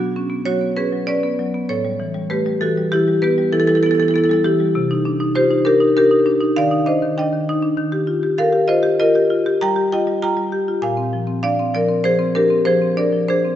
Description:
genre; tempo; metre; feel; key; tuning
classical, contemporary piece for solo marimba; 98 BPM; 5/4; straight; C minor from 4.7 s; A4 = 439 Hz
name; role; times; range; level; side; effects
marimba with medium hard mallets; solo; 0.0-13.6 s; A2 to Bb5; -15 LUFS; equal; none
room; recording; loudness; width
wet concert hall reverb, RT60 2.4 s; nothing above 7.9 kHz; -15 LUFS; side -11 dB against mid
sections
0.0-13.6 A section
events
none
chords
0.0 Bmadd9; 1.7 A9; 4.7 Cm9; 7.8 Ebadd9; 10.8 Bb9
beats
0.47 1.08 | 1.70 2.31 2.92 3.52 4.13 | 4.74 5.35 5.96 6.56 7.17 | 7.78 8.38 8.99 9.60 10.22 | 10.82 11.44 12.05 12.67 13.30

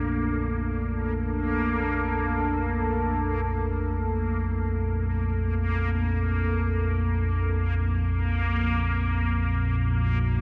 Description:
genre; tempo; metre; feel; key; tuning
dark ambient drone; free time; none; none; Bb major; A4 = 441 Hz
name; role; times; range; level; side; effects
deep dark ambient pad; sustained chords; 0.0-10.4 s; Bb2 to A4; -33 LUFS; equal; chorus, built-in reverb
deep rumbling drone; drone; 0.0-10.4 s; Bb1 to F2; -28 LUFS; equal; built-in reverb, lush chorus
backwards swelling texture; texture; 0.0-10.4 s; Bb3; -34 LUFS; equal; built-in reverb
room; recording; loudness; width
moderate huge ambient reverb, RT60 7.4 s; none; -26 LUFS; mono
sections
0.0-10.4 A section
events
none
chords
0.0 Bb; 8.2 Ebm/Bb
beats
free time

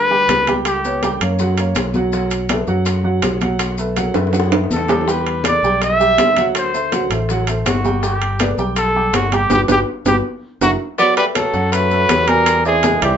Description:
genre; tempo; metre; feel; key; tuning
Afro-Cuban jazz; 162 BPM; 4/4; straight; G major; A4 = 440 Hz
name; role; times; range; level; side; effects
warm trumpet; melody; 0.0-1.2, 4.7-13.2 s; F#4 to E5; -16 LUFS; equal; none
clear upright piano; accompaniment; 0.0-13.2 s; F#3 to Ab5; -22 LUFS; right 3 dB; none
modern bright fingered electric bass; bass; 0.0-13.2 s; F#1 to F#2; -21 LUFS; left 1 dB; none
congas; percussion; 0.1-13.2 s; none; -24 LUFS; left 2 dB; none
bongos; percussion; 0.3-13.0 s; none; -27 LUFS; left 5 dB; none
maracas; percussion; 0.3-13.2 s; none; -32 LUFS; left 5 dB; none
timbales; percussion; 0.3-13.2 s; none; -22 LUFS; right 3 dB; none
breathy tenor saxophone; second line; 11.0-13.2 s; E3 to B3; -21 LUFS; right 3 dB; none
room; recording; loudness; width
wet studio reverb, RT60 0.5 s; band playing live in one room, nothing above 7.7 kHz; -14 LUFS; side -8 dB against mid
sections
0.0-11.0 A section; 11.0-13.2 B section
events
drum fill 4.2-5.1, 9.9-11.0; band accent 9.5-11.0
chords
0.0 G; 0.7 Gmaj7#11/C#; 1.4 F#; 2.1 B5; 5.1 Em9; 6.6 D7; 8.0 Gmaj7; 10.2 F#7; 11.0 B5; 12.5 E7b13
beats
0.29 | 0.65 1.02 1.39 1.76 | 2.13 2.50 2.86 3.23 | 3.60 3.97 4.34 4.71 | 5.08 5.45 5.82 6.18 | 6.55 6.92 7.29 7.66 | 8.03 8.40 8.77 9.14 | 9.51 9.88 10.25 10.62 | 10.99 11.36 11.73 12.10 | 12.46 12.83

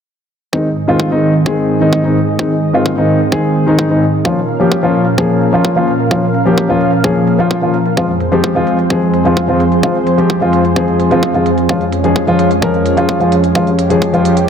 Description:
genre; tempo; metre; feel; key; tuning
EDM, festival progressive house; 129 BPM; 4/4; straight; Ab major; A4 = 440 Hz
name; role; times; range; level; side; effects
dark concert grand piano; accompaniment; 0.5-14.3 s; Eb3 to Bb4; -12 LUFS; left 1 dB; sidechain pumping, tape echo
lush unison pad; sustained chords; 0.5-14.5 s; F2 to F5; -16 LUFS; right 2 dB; chorus, sidechain pumping
electronic hi-hat; drums; 0.5-14.5 s; none; -35 LUFS; right 6 dB; overdrive, low-pass filter on hats, low-pass filter on room
electronic kick drum; drums; 0.5-14.1 s; none; -20 LUFS; right 1 dB; overdrive, high-pass filter on kick
room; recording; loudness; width
moderate lush hall reverb, RT60 2.1 s; none; -10 LUFS; side -7 dB against mid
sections
0.5-14.5 A section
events
filter sweep on drum 0.5-14.5; filter sweep on analog synth pad 0.5-14.5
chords
0.5 Ab; 4.3 Bbm; 8.0 Fm; 11.7 Db/F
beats
| 0.53 1.00 1.46 1.93 | 2.39 2.86 3.32 3.79 | 4.25 4.72 5.18 5.65 | 6.11 6.58 7.04 7.51 | 7.97 8.44 8.90 9.37 | 9.83 10.30 10.76 11.23 | 11.69 12.16 12.62 13.09 | 13.55 14.02 14.48

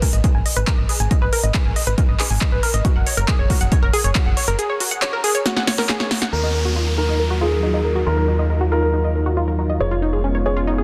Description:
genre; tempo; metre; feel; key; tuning
uplifting trance; 138 BPM; 4/4; straight; Eb minor; A4 = 440 Hz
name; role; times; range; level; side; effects
unison pluck; arpeggios; 0.0-10.8 s; Db4 to Ab5; -26 LUFS; equal; sidechain pumping, dub echo
big-room dance drum kit; drums; 0.0-6.3 s; handclaps, hi-hat, snare drum; -26 LUFS; equal; low-pass filter on hats, low-pass filter on snare, low-pass filter on room
electronic kick drum; drums; 0.0-4.2 s; none; -21 LUFS; equal; none
solid FM bass; bass; 0.1-10.8 s; F1 to Eb2; -23 LUFS; equal; sidechain pumping
dark baby grand piano; second line; 6.3-10.8 s; Ab4 to Db5; -26 LUFS; equal; dub echo
lush unison pad; sustained chords; 6.8-10.8 s; Gb3 to Bb4; -28 LUFS; equal; chorus, phaser, sidechain pumping
downlifter; sound effects; 6.3-9.8 s; none; -33 LUFS; equal; none
room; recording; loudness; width
light reverb; dense, heavily limited modern master; -19 LUFS; mono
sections
0.0-6.3 A section; 6.3-10.8 B section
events
filter sweep on synth pluck 0.0-6.3; kick drops out 4.6-6.3; drum fill 5.5-6.3; band accent 6.2; filter sweep on analog synth pad 6.3-10.8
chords
0.0 Ab5; 2.8 Gbadd9; 6.3 Ebmadd9; 9.8 Db7/F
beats
0.24 0.67 | 1.11 1.54 1.98 2.41 | 2.85 3.28 3.72 4.15 | 4.59 5.02 5.46 5.89 | 6.33 6.76 7.20 7.63 | 8.06 8.50 8.94 9.37 | 9.80 10.24 10.67

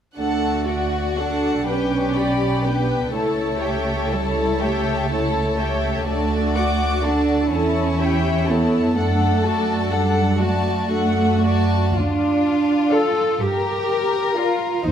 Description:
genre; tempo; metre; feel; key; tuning
classical; 41 BPM (dotted quarters); 6/8; rubato; D major; A4 = 440 Hz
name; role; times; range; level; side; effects
dark studio violin section; melody; 0.2-14.9 s; E4 to C5; -26 LUFS; left 6 dB; none
warm studio violin section; second line; 0.2-14.7 s; B4 to D6; -26 LUFS; left 3 dB; none
warm studio viola section; accompaniment; 0.2-14.7 s; D4 to D5; -25 LUFS; right 1 dB; none
dark studio cello section; bass; 0.2-14.9 s; G3 to A4; -22 LUFS; right 2 dB; none
dark studio double bass section; bass; 0.2-14.9 s; B1 to G2; -24 LUFS; right 1 dB; none
room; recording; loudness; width
moderate scoring stage reverb, RT60 1.5 s; none; -18 LUFS; side -9 dB against mid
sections
0.2-14.9 A section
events
none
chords
0.2 D; 1.7 G/B; 3.1 A7/C#; 6.1 D; 7.5 A7/E; 9.0 D/F#; 12.0 Dm; 13.4 Gm7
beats
| 0.18 1.67 | 3.13 4.61 | 6.08 7.52 | 8.96 10.40 | 11.96 13.39 | 14.84

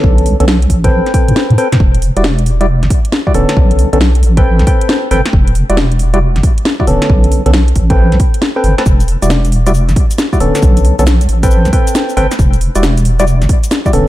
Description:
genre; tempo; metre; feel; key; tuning
UK garage, two-step garage; 136 BPM; 4/4; swing 66% on 16ths; E minor; A4 = 441 Hz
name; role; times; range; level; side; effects
percussive organ stab; stabs; 0.0-14.1 s; D3 to A5; -15 LUFS; equal; chorus, cassette tape, ping-pong delay
deep soft wobble bass; bass; 0.0-14.0 s; D1 to A2; -11 LUFS; equal; chorus
electronic kick drum; drums; 0.0-13.9 s; none; -11 LUFS; equal; small room reverb
house drum kit; drums; 0.2-14.0 s; cabasa, hi-hat, snare drum; -18 LUFS; equal; small room reverb
room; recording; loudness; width
digital ambience; dark, warm production; -9 LUFS; side -15 dB against mid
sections
0.0-14.1 A section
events
none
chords
0.0 Bm9; 0.7 Am9; 1.8 Em9; 3.6 Bm9; 4.2 Am9; 5.3 Em9; 7.1 Bm9; 7.8 Am9; 8.9 Em9; 10.6 Bm9; 11.3 Am9; 12.4 Em9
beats
| 0.04 0.48 0.92 1.36 | 1.80 2.24 2.68 3.12 | 3.57 4.01 4.45 4.89 | 5.33 5.77 6.21 6.66 | 7.10 7.54 7.98 8.42 | 8.86 9.30 9.74 10.18 | 10.62 11.07 11.51 11.95 | 12.39 12.83 13.27 13.71

